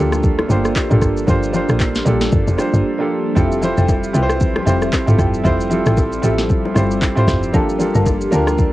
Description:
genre	amapiano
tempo	115 BPM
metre	4/4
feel	swing 58% on 16ths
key	G dorian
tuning	A4 = 440 Hz
part	warm concert grand piano	accompaniment	0.0-8.7 s	A3 to C5	-19 LUFS	right 2 dB	cassette tape
part	hollow soft pad	sustained chords	0.0-8.7 s	F3 to E5	-24 LUFS	left 2 dB	ensemble chorus, sidechain pumping, cassette tape
part	woody log drum bass	bass	0.0-8.7 s	F1 to D2	-19 LUFS	equal	none
part	smooth R&B drum kit	drums	0.1-8.7 s	handclaps, kick drum, rim click, shaker, snare drum, toms	-18 LUFS	equal	vintage 12-bit sampler grit, cassette tape
part	bongos and congas	percussion	0.1-8.7 s	none	-25 LUFS	left 3 dB	none
part	marimba with hard mallets	stabs	3.4-8.6 s	A4 to A5	-26 LUFS	left 2 dB	cassette tape, tape echo
room	light reverb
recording	home recording on cassette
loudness	-14 LUFS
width	side -16 dB against mid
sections	0.0-8.7 A section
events	break 2.8-3.4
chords	0.0 Gm9; 3.4 Fmaj9; 7.5 Gm9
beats	0.24 0.76 | 1.28 1.80 2.32 2.85 | 3.37 3.89 4.41 4.93 | 5.45 5.97 6.50 7.02 | 7.54 8.06 8.58

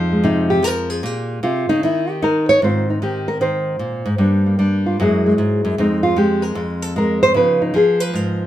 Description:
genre	solo jazz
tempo	152 BPM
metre	4/4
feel	swing 66% on 8ths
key	unclear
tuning	A4 = 441 Hz
part	nylon-string guitar	solo	0.0-8.5 s	F2 to Db5	-15 LUFS	equal	none
room	moderate studio reverb, RT60 0.6 s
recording	none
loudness	-15 LUFS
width	side -12 dB against mid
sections	0.0-2.6 A section; 2.6-8.5 A section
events	nylon-string guitar solo 0.0-8.5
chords	0.0 Fm7; 1.0 Bbm7; 1.8 N.C.; 2.6 Ab69; 4.2 Gm7; 5.0 Gbsus2; 5.8 Fm; 7.3 Db9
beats	0.22 0.62 | 1.01 1.41 1.81 2.20 | 2.60 3.00 3.39 3.79 | 4.18 4.58 4.97 5.37 | 5.77 6.16 6.56 6.95 | 7.34 7.74 8.13

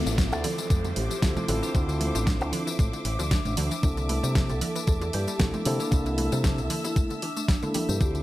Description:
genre	nu-disco, nu disco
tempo	115 BPM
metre	4/4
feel	swing 54% on 16ths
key	unclear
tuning	A4 = 440 Hz
part	mellow tine electric piano	accompaniment	0.0-8.2 s	Bb3 to A4	-33 LUFS	equal	vintage 12-bit sampler grit, sidechain pumping
part	rich symphonic string section	sustained chords	0.0-8.2 s	Bb3 to E6	-36 LUFS	equal	sidechain pumping
part	wide unison pluck	arpeggios	0.0-8.2 s	C3 to A3	-37 LUFS	left 1 dB	sidechain pumping, digital delay
part	downlifter	sound effects	0.0-3.8 s	none	-37 LUFS	left 3 dB	none
part	fingered electric bass with an envelope filter	bass	0.1-8.2 s	A1 to C3	-28 LUFS	equal	tube saturation, sidechain pumping
part	pop drum kit	drums	0.1-8.2 s	hi-hat, snare drum, tambourine	-33 LUFS	equal	none
part	electronic kick drum	drums	0.2-8.1 s	none	-24 LUFS	equal	overdrive
part	vibraphone with medium mallets	melody	0.3-8.1 s	D4 to A4	-36 LUFS	equal	digital delay
part	bongos and congas	percussion	0.4-7.9 s	none	-36 LUFS	right 2 dB	none
room	digital ambience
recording	none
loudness	-24 LUFS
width	side -16 dB against mid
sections	0.0-8.2 A section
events	none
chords	0.0 Dm9; 3.8 C13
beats	0.18 0.70 1.22 | 1.75 2.27 2.79 3.31 | 3.83 4.36 4.88 5.40 | 5.92 6.44 6.96 7.49 | 8.01

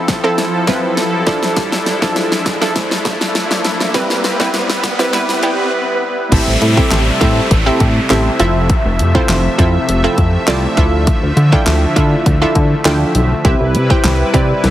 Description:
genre	dance-pop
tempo	101 BPM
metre	4/4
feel	straight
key	unclear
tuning	A4 = 440 Hz
part	wide unison pluck	accompaniment	0.0-14.6 s	F3 to G5	-17 LUFS	right 1 dB	sidechain pumping
part	warm analog pad	sustained chords	0.0-14.7 s	C3 to E5	-20 LUFS	left 1 dB	chorus, tremolo, sidechain pumping
part	riser and downlifter	sound effects	0.0-11.1 s	none	-23 LUFS	equal	none
part	pop drum kit	drums	0.1-14.7 s	crash cymbal, handclaps, hi-hat, kick drum, snare drum	-16 LUFS	equal	none
part	chorused synth bass	bass	6.3-14.7 s	F1 to D3	-14 LUFS	equal	sidechain pumping
room	light reverb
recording	heavily compressed radio sound, multiband compression, high-pass filter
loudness	-11 LUFS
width	side -13 dB against mid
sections	0.0-6.3 A section; 6.3-14.7 B section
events	build-up 0.0-6.3; drum fill 0.0-5.7; riser 0.0-6.3; break 5.7-6.3; drop 6.3-14.7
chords	0.0 Fmaj7; 1.3 Dmadd9; 3.9 Cmaj7; 5.1 Em; 6.3 Am7; 8.4 Fmaj7; 10.8 Dmadd9; 13.4 Cmaj7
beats	0.38 0.97 | 1.57 2.16 2.75 3.35 | 3.94 4.54 5.13 5.72 | 6.32 6.91 7.51 8.10 | 8.70 9.29 9.88 10.48 | 11.07 11.67 12.26 12.85 | 13.45 14.04 14.64

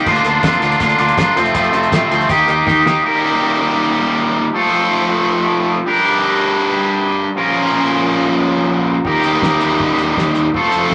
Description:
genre	indie rock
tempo	160 BPM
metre	4/4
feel	straight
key	unclear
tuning	A4 = 440 Hz
part	overdriven electric guitar	riff	0.0-10.9 s	F2 to Bb4	-15 LUFS	equal	none
part	growling fingered electric bass	bass	0.1-3.0, 9.0-10.9 s	F1 to G2	-28 LUFS	equal	overdrive
part	cloth-damped thuddy drum kit	drums	0.1-2.9, 9.0-10.9 s	crash cymbal, hi-hat, kick drum, snare drum	-24 LUFS	equal	none
room	wet large studio reverb, RT60 1.2 s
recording	none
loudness	-15 LUFS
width	mono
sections	0.0-3.0 A section; 3.0-10.9 B section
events	drum fill 2.7-3.0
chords	0.1 Bb/D; 1.4 F; 2.3 Eb; 4.5 F; 5.9 Gm; 7.4 Bbm; 9.1 Eb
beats	| 0.07 0.44 0.81 1.18 | 1.55 1.93 2.30 2.67 | 3.05 3.42 3.79 4.17 | 4.55 4.92 5.30 5.67 | 6.05 6.42 6.80 7.17 | 7.55 7.93 8.30 8.68 | 9.05 9.43 9.80 10.18 | 10.55 10.93

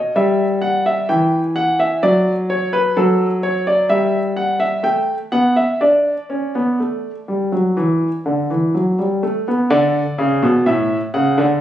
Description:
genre	classical, baroque-style two-part invention for grand piano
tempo	63 BPM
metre	4/4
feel	straight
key	D major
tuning	A4 = 439 Hz
part	clear grand piano	solo	0.0-11.6 s	A2 to G5	-15 LUFS	equal	none
room	moderate stone room reverb, RT60 1.0 s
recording	recorded on a phone in the room, club reverb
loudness	-15 LUFS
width	side -11 dB against mid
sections	0.0-9.7 A section; 9.7-11.6 B section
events	none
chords	0.2 Em/G; 2.0 D/F#; 3.9 Em/G; 4.8 A5; 5.8 D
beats	0.15 1.09 | 2.02 2.96 3.90 4.85 | 5.81 6.79 7.77 8.74 | 9.71 10.66

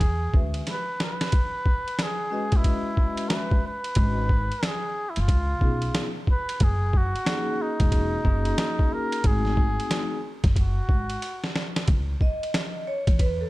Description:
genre	hip hop, jazz-hop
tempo	91 BPM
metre	4/4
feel	swing 63% on 16ths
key	C# minor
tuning	A4 = 443 Hz
part	trumpet with cup mute	melody	0.0-11.5 s	D#4 to B4	-30 LUFS	equal	none
part	upright bass	bass	0.0-13.4 s	E1 to E2	-26 LUFS	equal	none
part	boom bap sampler-style drum kit	drums	0.0-13.4 s	hi-hat, kick drum, ride cymbal, snare drum	-24 LUFS	equal	none
part	vibraphone with medium mallets	accompaniment	0.3-13.5 s	G#3 to E5	-30 LUFS	left 1 dB	none
room	small room ambience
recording	dark, warm production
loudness	-22 LUFS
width	side -18 dB against mid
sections	0.0-11.9 A section; 11.9-13.5 B section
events	drum fill 0.7-1.3, 11.2-11.9; vibraphone solo 11.9-13.5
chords	0.0 E9; 1.3 G#m11; 4.0 G#m7; 5.3 C#9; 6.6 F#69; 9.2 G#7b9; 11.9 C#madd9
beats	0.01 0.67 | 1.33 1.99 2.65 3.31 | 3.97 4.62 5.29 5.94 | 6.60 7.26 7.92 8.58 | 9.24 9.90 10.56 11.22 | 11.88 12.54 13.20

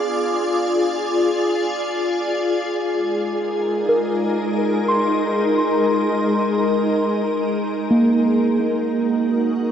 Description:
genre	ambient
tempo	free time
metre	none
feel	none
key	unclear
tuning	A4 = 442 Hz
part	soft additive organ-like pad	sustained chords	0.0-9.7 s	Ab3 to D#5	-19 LUFS	left 1 dB	ensemble chorus, built-in reverb
part	muted felt-like synth keys	arpeggios	3.9-9.7 s	Bb3 to C6	-21 LUFS	right 2 dB	chorus, tape echo
room	wet huge ambient reverb, RT60 8.2 s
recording	none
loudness	-17 LUFS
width	side -8 dB against mid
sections	0.0-2.8 A section; 2.8-9.7 B section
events	filter sweep on ambient pad 2.8-9.7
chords	0.0 Fm6; 2.8 Abadd9; 8.3 F#6/A#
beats	free time

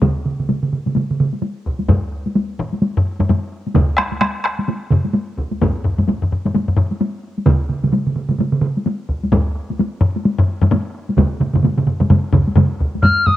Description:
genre	japanese traditional, taiko drum ensemble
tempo	129 BPM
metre	4/4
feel	swing 60% on 16ths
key	unclear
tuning	A4 = 440 Hz
part	solo taiko drums	percussion	0.0-12.7 s	none	-18 LUFS	right 3 dB	none
part	taiko ensemble	percussion	0.0-13.4 s	none	-20 LUFS	left 1 dB	none
part	taiko ensemble	percussion	0.0-12.9 s	none	-21 LUFS	equal	none
part	taiko ensemble	percussion	1.9-13.4 s	none	-17 LUFS	left 1 dB	none
part	bright reedy wooden piccolo	melody	13.0-13.4 s	Eb6 to F6	-13 LUFS	left 2 dB	none
room	light reverb, small room ambience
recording	home recording on cassette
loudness	-15 LUFS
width	side -14 dB against mid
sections	0.0-13.0 A section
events	none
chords	none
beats	| 0.03 0.49 0.96 1.43 | 1.89 2.36 2.83 3.29 | 3.76 4.22 4.69 5.15 | 5.62 6.08 6.55 7.01 | 7.47 7.94 8.40 8.87 | 9.33 9.79 10.26 10.72 | 11.18 11.64 12.11 12.57 | 13.03

